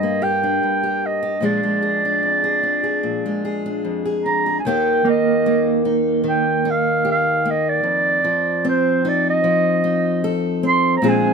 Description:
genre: acoustic folk-pop ballad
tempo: 75 BPM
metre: 4/4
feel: straight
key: Eb major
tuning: A4 = 440 Hz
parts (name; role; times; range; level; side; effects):
- breathy clarinet; melody; 0.0-11.3 s; C5 to C6; -19 LUFS; right 3 dB; none
- fingerpicked steel-string acoustic guitar; accompaniment; 0.0-11.3 s; Eb2 to A4; -20 LUFS; left 3 dB; none
- mellow electric guitar; arpeggios; 5.0-11.3 s; Bb3 to C4; -20 LUFS; right 9 dB; tremolo
room: little or no reverb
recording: close, detailed microphones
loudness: -16 LUFS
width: side -5 dB against mid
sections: 0.0-4.6 A section; 4.6-11.3 B section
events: none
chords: 0.0 Gm; 1.4 Bb7; 4.6 Eb; 7.8 F7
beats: 0.62 | 1.43 2.23 3.03 3.83 | 4.64 5.44 6.24 7.04 | 7.83 8.63 9.42 10.22 | 11.01

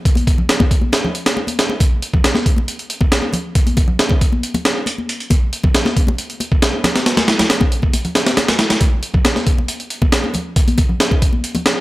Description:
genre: breakbeat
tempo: 137 BPM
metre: 4/4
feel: straight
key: none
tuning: none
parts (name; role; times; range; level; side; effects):
- breakbeat sampler-style drum kit; drums; 0.1-11.8 s; hi-hat, kick drum, snare drum; -14 LUFS; equal; none
- congas; percussion; 0.2-11.6 s; none; -23 LUFS; left 2 dB; none
room: digital ambience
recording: dry, gritty hardware recording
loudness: -14 LUFS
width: side -18 dB against mid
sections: 0.0-11.8 A section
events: kick drops out 7.9-8.8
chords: none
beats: | 0.05 0.49 0.93 1.37 | 1.80 2.24 2.68 3.12 | 3.56 3.99 4.43 4.87 | 5.31 5.75 6.18 6.62 | 7.06 7.50 7.94 8.37 | 8.81 9.25 9.69 10.12 | 10.56 11.00 11.44

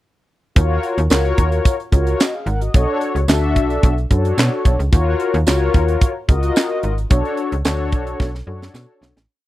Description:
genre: early-eighties boogie funk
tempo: 110 BPM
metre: 4/4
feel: straight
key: unclear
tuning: A4 = 439 Hz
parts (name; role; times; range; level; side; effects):
- mellow synth brass; accompaniment; 0.6-9.1 s; D4 to Gb5; -20 LUFS; left 3 dB; chorus
- slap-like FM bass; bass; 0.6-9.3 s; Ab1 to B2; -19 LUFS; equal; none
- tight funk drum kit; drums; 0.6-9.3 s; handclaps, hi-hat, kick drum, snare drum; -15 LUFS; right 1 dB; none
- tambourine; percussion; 1.1-8.9 s; none; -31 LUFS; right 10 dB; none
room: small room reverb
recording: dry, close 1970s-style studio recording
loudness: -15 LUFS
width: side -15 dB against mid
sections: 0.6-9.3 breakdown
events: fade-out 7.1-9.3; drum fill 8.2-9.3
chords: 0.6 Ebm9; 2.7 Bm9; 4.9 Ebm9; 7.1 Bm9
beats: | 0.56 1.11 1.65 2.20 | 2.74 3.29 3.83 4.38 | 4.93 5.47 6.02 6.56 | 7.11 7.65 8.20 8.74

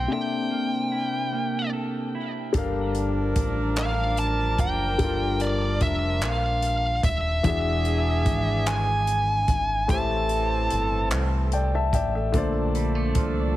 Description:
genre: slow six-eight R&B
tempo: 49 BPM (dotted quarters)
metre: 6/8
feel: straight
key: G dorian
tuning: A4 = 440 Hz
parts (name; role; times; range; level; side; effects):
- bluesy overdriven lead guitar; melody; 0.0-11.1 s; D5 to A5; -27 LUFS; equal; distortion, tape echo
- clean electric guitar; second line; 0.0-3.1, 12.4-13.6 s; Bb2 to A4; -32 LUFS; right 6 dB; wide subtle chorus
- warm concert grand piano; accompaniment; 0.0-13.6 s; A2 to A5; -28 LUFS; left 4 dB; none
- deep dub fingered electric bass; bass; 0.0-13.6 s; Eb1 to C2; -26 LUFS; equal; none
- warm horn section; stabs; 2.5-13.6 s; E3 to Bb4; -32 LUFS; right 3 dB; none
- compact cocktail drum kit; drums; 2.5-13.3 s; handclaps, hi-hat, kick drum; -28 LUFS; equal; none
room: studio reverb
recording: heavily compressed radio sound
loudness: -22 LUFS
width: side -15 dB against mid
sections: 0.0-2.5 A section; 2.5-13.6 B section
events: grand piano fill 11.1-12.3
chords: 0.1 C13; 2.5 Gm9; 7.4 E7; 9.9 Am7; 12.3 Bbmaj7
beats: | 0.10 1.32 | 2.54 3.77 | 4.99 6.22 | 7.44 8.67 | 9.89 11.12 | 12.34 13.56

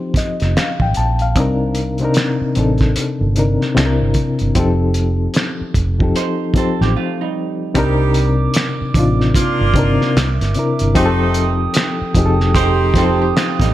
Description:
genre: R&B, neo-soul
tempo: 75 BPM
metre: 4/4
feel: swing 61% on 16ths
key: C dorian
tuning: A4 = 440 Hz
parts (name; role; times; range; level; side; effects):
- reed electric piano; accompaniment; 0.0-13.7 s; C3 to A5; -18 LUFS; left 3 dB; fast tremolo
- vintage muted fingered electric bass; bass; 0.1-13.7 s; F1 to C2; -17 LUFS; right 1 dB; none
- cloth-damped thuddy drum kit; drums; 0.1-13.7 s; finger snaps, hi-hat, kick drum, snare drum; -18 LUFS; right 1 dB; none
- vintage hollow-body jazz guitar; second line; 6.2-7.7, 12.6-13.7 s; G3 to C5; -23 LUFS; right 13 dB; none
- glass harmonica; sustained chords; 7.8-13.7 s; A4 to Eb6; -25 LUFS; right 6 dB; none
- mellow saxophone section; stabs; 7.8-13.3 s; G3 to G4; -21 LUFS; right 4 dB; slapback echo
room: light reverb, small room ambience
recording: none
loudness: -14 LUFS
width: side -14 dB against mid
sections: 0.0-7.8 A section; 7.8-13.7 B section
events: break 7.0-7.8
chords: 0.0 F9; 1.4 Cm9; 3.8 C9; 4.6 F9; 7.8 Cm9; 10.2 C9; 11.0 F9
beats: 0.56 | 1.36 2.16 2.96 3.76 | 4.56 5.36 6.16 6.96 | 7.76 8.56 9.36 10.16 | 10.96 11.76 12.56 13.36

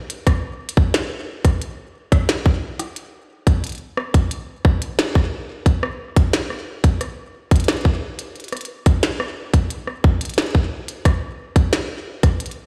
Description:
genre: IDM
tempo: 89 BPM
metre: 4/4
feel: straight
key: none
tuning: none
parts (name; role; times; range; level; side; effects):
- glitchy drum kit; drums; 0.1-12.6 s; hi-hat, rim click, snare drum; -27 LUFS; equal; digital delay
- electronic kick drum; drums; 0.3-12.4 s; none; -16 LUFS; equal; none
room: light reverb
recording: played on a big sound system in a bare room, stone room reverb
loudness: -20 LUFS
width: mono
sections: 0.0-12.7 A section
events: none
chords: none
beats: | 0.27 0.94 1.61 2.29 | 2.96 3.64 4.31 4.99 | 5.66 6.33 7.01 7.68 | 8.36 9.03 9.70 10.38 | 11.05 11.73 12.40

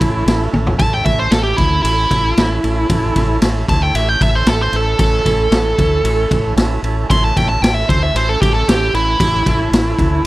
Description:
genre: blues rock power trio and southern rock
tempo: 114 BPM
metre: 4/4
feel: straight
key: A mixolydian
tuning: A4 = 440 Hz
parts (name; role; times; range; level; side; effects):
- nasal lead guitar with a parked wah; melody; 0.0-10.3 s; E4 to C6; -17 LUFS; right 1 dB; overdrive, slapback echo
- overdriven tonewheel organ; sustained chords; 0.0-10.2 s; A3 to B4; -24 LUFS; right 5 dB; lush chorus
- deep dub fingered electric bass; bass; 0.0-10.3 s; A1 to D2; -19 LUFS; equal; none
- raw garage drum kit; drums; 0.0-10.1 s; kick drum, ride cymbal, snare drum, toms; -17 LUFS; equal; none
room: little or no reverb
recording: dry, close 1970s-style studio recording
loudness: -12 LUFS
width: side -18 dB against mid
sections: 0.0-10.3 A section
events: lead electric guitar solo 0.0-10.3; drum fill 0.5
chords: 0.0 A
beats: 0.26 | 0.79 1.31 1.84 2.37 | 2.89 3.42 3.94 4.47 | 5.00 5.52 6.05 6.57 | 7.10 7.62 8.14 8.67 | 9.19 9.72 10.24

